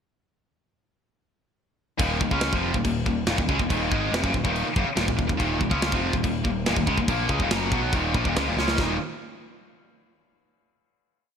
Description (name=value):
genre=heavy metal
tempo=142 BPM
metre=4/4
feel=straight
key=Eb minor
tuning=A4 = 440 Hz
part: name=tight distorted guitar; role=riff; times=2.0-9.0 s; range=Eb2 to Db4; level=-24 LUFS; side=left 1 dB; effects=distortion
part: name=growling picked electric bass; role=bass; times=2.0-9.0 s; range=Eb1 to Db2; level=-29 LUFS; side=equal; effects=overdrive
part: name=tight metal drum kit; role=drums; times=2.0-8.9 s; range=crash cymbal, kick drum, snare drum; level=-27 LUFS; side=equal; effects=gated reverb
room=light reverb, small room ambience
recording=bright 1980s-style digital production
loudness=-22 LUFS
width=side -7 dB against mid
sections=2.0-8.8 riff; 8.8-10.5 final chord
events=drum fill 8.6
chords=2.0 Ebm; 8.8 Eb5